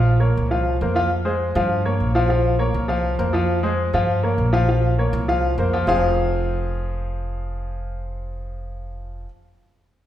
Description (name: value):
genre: latin, salsa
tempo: 201 BPM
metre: 4/4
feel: straight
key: F minor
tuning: A4 = 440 Hz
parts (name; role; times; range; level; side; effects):
- clear baby grand piano; accompaniment; 0.0-9.3 s; F3 to F5; -21 LUFS; left 1 dB; none
- upright bass; bass; 0.0-9.2 s; F1 to G2; -22 LUFS; right 1 dB; none
room: wet recital hall reverb, RT60 1.5 s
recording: recorded in a church or concert hall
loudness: -18 LUFS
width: side -12 dB against mid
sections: 0.0-1.1 A section; 1.1-5.9 B section; 5.9-8.3 C section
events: none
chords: 0.0 Bbm; 0.5 C7sus4; 1.1 Fm; 1.7 Gm7b5; 2.3 Bbm; 2.9 C7sus4; 3.5 Fm; 4.1 Gm7b5; 4.7 Bbm; 5.3 C7sus4; 5.9 Fm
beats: 0.22 0.52 0.81 | 1.11 1.41 1.71 2.00 | 2.30 2.60 2.90 3.19 | 3.49 3.79 4.09 4.38 | 4.68 4.98 5.28 5.58 | 5.88 6.17 6.47 6.77 | 7.07 7.37 7.66 7.96